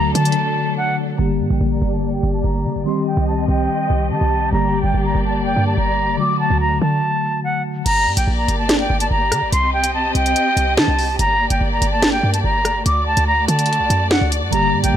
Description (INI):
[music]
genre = hip hop, drill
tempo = 144 BPM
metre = 4/4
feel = half-time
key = G harmonic minor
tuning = A4 = 440 Hz
[part]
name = bright concert flute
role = melody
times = 0.0-15.0 s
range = F#5 to D6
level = -20 LUFS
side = equal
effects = low-pass filter, ping-pong delay
[part]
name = mellow tine electric piano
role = accompaniment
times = 0.0-7.8, 14.5-15.0 s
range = D3 to G4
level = -21 LUFS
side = left 2 dB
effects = medium stereo tremolo, low-pass filter
[part]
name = dark symphonic string section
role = sustained chords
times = 0.0-15.0 s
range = F#3 to Eb5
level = -25 LUFS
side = left 1 dB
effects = low-pass filter
[part]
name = short 808-style bass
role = bass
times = 0.0-15.0 s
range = G1 to Eb3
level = -20 LUFS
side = equal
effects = none
[part]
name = drill drum kit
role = drums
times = 0.2-0.4, 7.9-14.9 s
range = crash cymbal, hi-hat, rim click, snare drum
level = -20 LUFS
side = equal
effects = none
[sound]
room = little or no reverb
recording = none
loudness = -15 LUFS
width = side -10 dB against mid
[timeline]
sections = 0.0-1.2 A section; 1.2-7.9 B section; 7.9-15.0 A section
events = break 0.4-1.2; filter sweep 1.2-7.9; stop 7.0-7.9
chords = 0.0 D; 1.2 Gm; 2.9 Cm; 4.5 Gm; 6.2 D; 7.9 Gm; 9.5 Cm; 11.2 Gm; 12.9 D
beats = 0.36 0.78 | 1.19 1.61 2.02 2.44 | 2.86 3.27 3.69 4.11 | 4.53 4.94 5.36 5.78 | 6.19 6.61 7.03 7.44 | 7.86 8.28 8.69 9.11 | 9.53 9.94 10.36 10.78 | 11.19 11.61 12.03 12.44 | 12.86 13.28 13.69 14.11 | 14.53 14.94